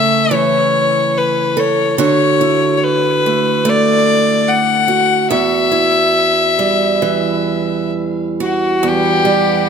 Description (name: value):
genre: celtic folk, Celtic slow air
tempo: 63-74 BPM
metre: 4/4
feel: rubato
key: E dorian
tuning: A4 = 443 Hz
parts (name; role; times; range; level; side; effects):
- clear fiddle; melody; 0.0-9.7 s; F#4 to F#5; -14 LUFS; left 4 dB; tape echo
- picked acoustic archtop guitar; accompaniment; 0.0-9.7 s; E2 to A4; -15 LUFS; right 4 dB; none
- clear chamber string section; sustained chords; 8.8-9.7 s; E3 to F#5; -20 LUFS; right 1 dB; none
room: moderate recital hall reverb, RT60 1.5 s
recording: none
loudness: -12 LUFS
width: side -7 dB against mid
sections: 0.0-8.8 A section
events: none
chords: 0.0 A/C#; 2.0 Dadd9; 5.3 Emadd9